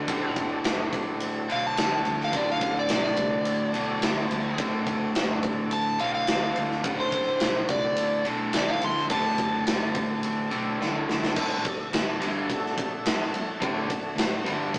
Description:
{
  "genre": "blues rock power trio and southern rock",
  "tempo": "106 BPM",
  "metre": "4/4",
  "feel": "straight",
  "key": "D mixolydian",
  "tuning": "A4 = 439 Hz",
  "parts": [
    { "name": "overdriven slide guitar", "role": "melody", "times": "0.0-10.2 s", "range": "A4 to C6", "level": "-30 LUFS", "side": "equal", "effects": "none" },
    { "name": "overdriven tonewheel organ", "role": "sustained chords", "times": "0.0-14.8 s", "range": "A3 to D5", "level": "-39 LUFS", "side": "equal", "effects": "none" },
    { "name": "crunchy overdriven guitar", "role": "riff", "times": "0.0-14.7 s", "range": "D2 to G3", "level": "-31 LUFS", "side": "equal", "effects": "none" },
    { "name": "vintage muted fingered electric bass", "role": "bass", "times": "0.0-14.7 s", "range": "D1 to D2", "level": "-44 LUFS", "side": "equal", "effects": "none" },
    { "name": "big rock drum kit", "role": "drums", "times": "0.1-14.8 s", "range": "crash cymbal, kick drum, ride cymbal, snare drum", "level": "-31 LUFS", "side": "equal", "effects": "none" }
  ],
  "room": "moderate stone room reverb, RT60 1.0 s",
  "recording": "rough rehearsal-room recording, small speaker sound",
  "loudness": "-26 LUFS",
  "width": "mono",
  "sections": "0.0-11.4 A section; 11.4-14.8 B section",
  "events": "electric slide guitar solo 0.0-11.4; drum fill 10.8-11.4",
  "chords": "0.0 D"
}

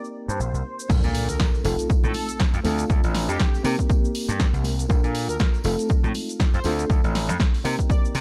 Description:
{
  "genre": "filtered disco house",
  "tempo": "120 BPM",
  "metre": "4/4",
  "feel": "swing 57% on 16ths",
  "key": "Bb major",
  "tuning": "A4 = 440 Hz",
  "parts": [
    { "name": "analog synth brass", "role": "melody", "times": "0.0-8.0 s", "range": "G4 to D5", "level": "-37 LUFS", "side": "equal", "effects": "chorus, sidechain pumping, low-pass filter" },
    { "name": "bright reed electric piano", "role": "accompaniment", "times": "0.0-8.2 s", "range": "A3 to Bb4", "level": "-31 LUFS", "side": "equal", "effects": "fast tremolo, phaser, sidechain pumping, low-pass filter" },
    { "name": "punchy analog drum machine", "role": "drums", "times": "0.0-8.2 s", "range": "cabasa, crash cymbal, hi-hat, snare drum", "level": "-33 LUFS", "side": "equal", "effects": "overdrive, sidechain pumping on perc, sidechain pumping on cymbals, sidechain pumping on hats" },
    { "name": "gritty slap bass", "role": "bass", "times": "0.3-8.2 s", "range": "F1 to C3", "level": "-28 LUFS", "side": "equal", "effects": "overdrive, sidechain pumping, low-pass filter" },
    { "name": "electronic kick drum", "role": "drums", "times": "0.9-8.0 s", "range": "none", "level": "-23 LUFS", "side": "equal", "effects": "overdrive" },
    { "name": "tambourine and congas", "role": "percussion", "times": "0.9-8.2 s", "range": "none", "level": "-40 LUFS", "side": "equal", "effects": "sidechain pumping on perc, low-pass filter on perc" },
    { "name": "impact", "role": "sound effects", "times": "0.9-2.9 s", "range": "none", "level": "-34 LUFS", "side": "equal", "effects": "none" }
  ],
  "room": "little or no reverb",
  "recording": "dark, warm production",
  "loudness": "-23 LUFS",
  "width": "mono",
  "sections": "0.9-8.2 A section",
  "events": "drop 0.9-8.2; impact 0.9-2.9",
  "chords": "0.0 Cm7; 0.9 Bbmaj7; 1.6 F7; 2.6 Dm7; 3.6 Cm7; 4.9 Bbmaj7; 5.6 F7; 6.6 Dm7; 7.6 Cm7"
}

